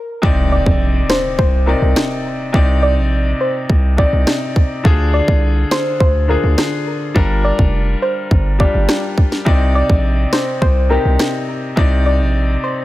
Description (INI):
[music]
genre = dancehall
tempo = 104 BPM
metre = 4/4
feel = straight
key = C minor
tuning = A4 = 440 Hz
[part]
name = clear concert grand piano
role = accompaniment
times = 0.2-12.8 s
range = C3 to D5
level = -20 LUFS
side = left 2 dB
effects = none
[part]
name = hard-hitting 808-style bass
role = bass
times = 0.2-12.6 s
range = F1 to D2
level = -15 LUFS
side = equal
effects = none
[part]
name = island pop drum kit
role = drums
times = 0.2-11.9 s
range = kick drum, rim click, snare drum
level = -15 LUFS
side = equal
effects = none
[part]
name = impact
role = sound effects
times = 0.2-2.5 s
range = none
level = -25 LUFS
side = equal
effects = none
[part]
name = soft round pluck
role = melody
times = 0.5-12.7 s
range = Bb4 to D5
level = -21 LUFS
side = equal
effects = chorus, digital delay
[sound]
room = digital ambience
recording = none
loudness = -13 LUFS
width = side -16 dB against mid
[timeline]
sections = 0.2-12.8 A section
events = stop 0.0; impact 0.2-2.5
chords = 0.2 Cmadd9; 4.8 Ddim; 7.2 Gm7; 9.5 Cmadd9